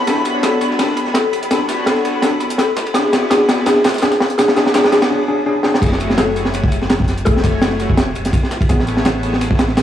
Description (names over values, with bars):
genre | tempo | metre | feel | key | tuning
drum and bass, jungle | 167 BPM | 4/4 | swing 54% on 16ths | F# minor | A4 = 440 Hz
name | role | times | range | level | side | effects
lush unison pad | sustained chords | 0.0-9.3 s | A3 to G#5 | -22 LUFS | left 1 dB | chorus
soft dub sub bass | bass | 0.0-9.8 s | E1 to B1 | -23 LUFS | equal | tube saturation, high-pass filter
twinkling granular texture | texture | 0.0-5.1 s | B5 | -26 LUFS | left 2 dB | built-in reverb
bell-like tine electric piano | stabs | 0.1-8.8 s | A3 to A4 | -21 LUFS | left 2 dB | low-pass filter, dub echo
crunchy breakbeat drum kit | drums | 0.1-9.8 s | crash cymbal, kick drum, ride cymbal, snare drum | -16 LUFS | equal | high-pass filter on kick, high-pass filter on cymbals, high-pass filter on snare, high-pass filter on room
dusty soul sampler-style drum kit | drums | 0.1-9.8 s | hi-hat, snare drum, tambourine | -29 LUFS | left 1 dB | overdrive, high-pass filter on perc, high-pass filter on snare, high-pass filter on hats
mallet-like synth pluck | melody | 0.4-7.8 s | G#4 to A4 | -19 LUFS | left 1 dB | chorus, dub echo
room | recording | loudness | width
moderate echo chamber reverb, RT60 1.5 s, small room ambience | dry, gritty hardware recording, faint mains hum | -13 LUFS | side -10 dB against mid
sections
0.0-5.8 A section; 5.8-9.8 B section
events
build-up 0.0-5.8; drum fill 0.1-5.1, 5.6; break 5.1-5.8; drop 5.8-9.8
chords
0.1 Bm7; 2.9 E7; 5.8 F#m7; 8.7 Amaj7